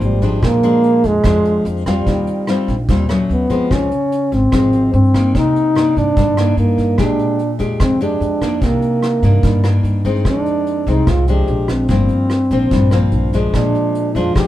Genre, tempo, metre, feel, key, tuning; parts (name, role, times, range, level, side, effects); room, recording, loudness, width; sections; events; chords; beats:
bossa nova; 146 BPM; 4/4; straight; A4 = 444 Hz
mellow trombone; melody; 0.0-14.5 s; G3 to G4; -16 LUFS; equal
nylon-string guitar; accompaniment; 0.0-14.5 s; F2 to G4; -18 LUFS; left 2 dB
upright bass; bass; 0.0-14.5 s; G1 to G2; -18 LUFS; equal
vintage brush drum kit; drums; 0.0-14.5 s; hi-hat, kick drum, rim click; -21 LUFS; equal
moderate studio reverb, RT60 0.5 s; band playing live in one room; -13 LUFS; side -14 dB against mid
0.0-14.5 A section
0.4 Bb7; 2.1 Eb69; 3.3 Dmaj7; 3.7 Dbmaj7; 5.3 Cm9; 7.0 Bb6; 8.6 Cm9; 10.3 Fm7; 11.5 Bb7; 11.9 Bbsus2/G; 13.5 Bb7
0.01 | 0.42 0.83 1.24 1.65 | 2.06 2.47 2.88 3.29 | 3.70 4.11 4.52 4.93 | 5.34 5.75 6.16 6.57 | 6.98 7.39 7.80 8.21 | 8.62 9.03 9.44 9.85 | 10.26 10.66 11.07 11.48 | 11.89 12.30 12.71 13.12 | 13.54 13.95 14.36